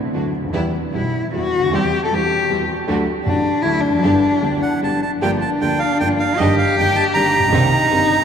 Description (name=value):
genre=tango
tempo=154 BPM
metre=3/4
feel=rubato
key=G major, G minor from 5.2 s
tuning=A4 = 439 Hz
part: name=dark baby grand piano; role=accompaniment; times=0.1-8.1 s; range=G1 to G4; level=-20 LUFS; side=right 1 dB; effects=none
part: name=rich symphonic string section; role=stabs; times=0.1-8.1 s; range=E2 to Bb4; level=-27 LUFS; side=right 3 dB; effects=none
part: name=warm cello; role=second line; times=0.9-8.2 s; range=D4 to A4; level=-19 LUFS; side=left 3 dB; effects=none
part: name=bandoneon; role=melody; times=4.6-8.2 s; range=Eb5 to Bb5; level=-18 LUFS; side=right 4 dB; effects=none
room=wet cathedral reverb, RT60 7.0 s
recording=in a vast, echoing space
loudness=-15 LUFS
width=side -7 dB against mid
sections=0.0-5.2 A section; 5.2-8.2 B section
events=cello solo 0.0-5.2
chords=0.0 D; 0.5 Em; 1.7 C/E; 2.9 D; 4.0 G; 5.2 Gm7; 6.4 Ebmaj7/G; 7.5 Cm7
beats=0.14 | 0.54 0.93 1.33 | 1.72 2.10 2.49 | 2.87 3.26 3.64 | 4.03 4.42 4.82 | 5.22 5.61 6.00 | 6.39 6.77 7.15 | 7.54 7.92